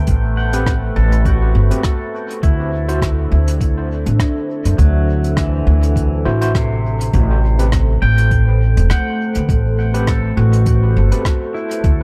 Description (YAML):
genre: ambient dub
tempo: 102 BPM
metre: 4/4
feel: swing 55% on 16ths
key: A dorian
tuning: A4 = 440 Hz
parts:
  - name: deep dark ambient pad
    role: sustained chords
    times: 0.0-12.0 s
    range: A3 to F#5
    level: -26 LUFS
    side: equal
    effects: chorus, built-in reverb
  - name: pedal steel guitar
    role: arpeggios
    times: 0.0-12.0 s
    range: C3 to G5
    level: -27 LUFS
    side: equal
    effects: dub echo
  - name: upright bass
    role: bass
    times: 0.0-12.0 s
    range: E1 to F#2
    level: -17 LUFS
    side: equal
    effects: tube saturation
  - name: electronic kick drum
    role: drums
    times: 0.1-12.0 s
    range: none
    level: -20 LUFS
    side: equal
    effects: none
  - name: soft brush drum kit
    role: drums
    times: 0.1-12.0 s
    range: hi-hat, rim click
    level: -30 LUFS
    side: equal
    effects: dub echo
  - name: overdriven tine electric piano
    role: stabs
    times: 0.5-11.2 s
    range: C4 to C5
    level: -30 LUFS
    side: equal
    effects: fast tremolo, dub echo
room: light reverb, small room ambience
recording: none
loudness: -16 LUFS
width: mono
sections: 0.0-12.0 A section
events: none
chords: 0.0 Am9; 2.4 D9; 7.1 Am9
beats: | 0.08 0.66 1.25 1.84 | 2.43 3.02 3.60 4.19 | 4.78 5.37 5.96 6.55 | 7.13 7.72 8.31 8.90 | 9.49 10.08 10.66 11.25 | 11.84